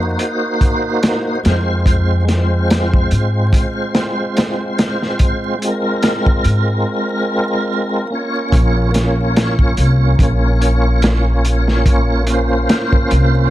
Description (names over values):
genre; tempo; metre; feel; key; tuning
trip hop; 72 BPM; 4/4; swing 56% on 16ths; Bb minor; A4 = 440 Hz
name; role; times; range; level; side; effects
tonewheel organ; accompaniment; 0.0-13.5 s; Ab3 to Db5; -18 LUFS; equal; overdrive, chorus vibrato, slow rotary speaker, tremolo, vintage 12-bit sampler grit, tape echo
upright bass; bass; 0.0-13.5 s; Bb1 to Ab2; -15 LUFS; equal; none
crunchy breakbeat drum kit; drums; 0.2-13.3 s; hi-hat, kick drum, snare drum; -16 LUFS; equal; none
room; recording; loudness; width
light reverb, small room ambience; dark, warm production, vinyl crackle; -13 LUFS; side -14 dB against mid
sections
0.0-8.5 A section; 8.5-13.5 B section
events
break 6.9-8.5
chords
0.0 Ebm; 1.9 Fm; 8.5 Bbm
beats
0.20 1.03 | 1.86 2.69 3.53 4.36 | 5.20 6.03 6.86 7.70 | 8.53 9.36 10.20 11.03 | 11.86 12.70